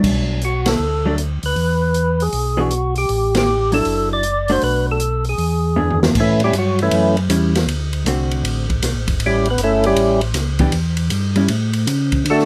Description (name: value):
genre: soul jazz organ trio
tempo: 157 BPM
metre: 4/4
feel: swing 66% on 8ths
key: A mixolydian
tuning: A4 = 441 Hz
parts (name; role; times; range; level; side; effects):
- vintage hollow-body jazz guitar; accompaniment; 0.0-11.5 s; D3 to G#4; -23 LUFS; equal; none
- mellow tonewheel organ; bass; 0.0-12.5 s; F#1 to D3; -22 LUFS; equal; slow rotary speaker
- open jazz drum kit; drums; 0.0-12.5 s; crash cymbal, hi-hat, kick drum, ride cymbal, snare drum, toms; -25 LUFS; equal; none
- percussive tonewheel organ; melody; 0.4-12.5 s; E3 to D5; -20 LUFS; equal; slow rotary speaker, overdrive
room: moderate booth ambience, RT60 0.2 s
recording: none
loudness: -18 LUFS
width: mono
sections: 0.0-6.2 A section; 6.2-12.5 B section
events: band accent 0.6, 3.3; drum fill 5.8-6.2; tonewheel organ solo 6.2-12.5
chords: 0.0 Bm7; 1.6 E; 3.1 A5; 3.9 D9/F#; 4.6 Bm7; 5.4 E7; 6.2 A7; 7.7 D7; 9.2 A7; 10.7 Em; 11.5 A